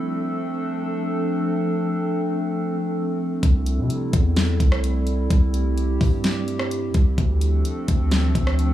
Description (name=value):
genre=hip hop, atmospheric cloud-rap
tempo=128 BPM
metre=4/4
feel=half-time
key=unclear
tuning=A4 = 440 Hz
part: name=warbly tape-like pad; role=sustained chords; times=0.0-8.7 s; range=F3 to A4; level=-24 LUFS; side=equal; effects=chorus, built-in reverb, sidechain pumping
part: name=long sustained 808-style bass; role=bass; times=3.4-8.7 s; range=C2 to C3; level=-21 LUFS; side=equal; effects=none
part: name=smooth R&B drum kit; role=drums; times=3.4-8.7 s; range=hi-hat, kick drum, rim click, snare drum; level=-21 LUFS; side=equal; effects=none
room=light reverb, digital ambience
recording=small room ambience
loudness=-19 LUFS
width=side -12 dB against mid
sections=0.0-8.7 A section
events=none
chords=0.0 Dm7; 3.4 C6; 7.2 Dm7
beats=0.15 0.62 1.09 | 1.55 2.02 2.49 2.96 | 3.43 3.90 4.37 4.84 | 5.30 5.77 6.24 6.71 | 7.18 7.65 8.12 8.59